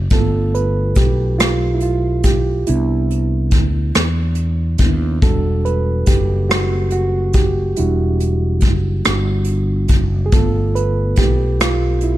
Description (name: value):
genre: slow six-eight R&B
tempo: 47 BPM (dotted quarters)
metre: 6/8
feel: straight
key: E minor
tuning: A4 = 440 Hz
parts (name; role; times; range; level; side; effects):
- mellow reed electric piano; accompaniment; 0.0-12.2 s; G3 to B4; -20 LUFS; right 3 dB; none
- fretless electric bass; bass; 0.0-12.2 s; E1 to E2; -18 LUFS; equal; none
- soft brush drum kit; drums; 0.1-12.2 s; hi-hat, kick drum, rim click; -16 LUFS; equal; none
room: studio reverb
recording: none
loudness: -14 LUFS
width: side -14 dB against mid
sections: 0.0-12.2 A section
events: reed electric piano solo 0.0-12.2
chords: 0.1 G7; 2.7 Cmaj9; 5.2 Em9; 10.3 G7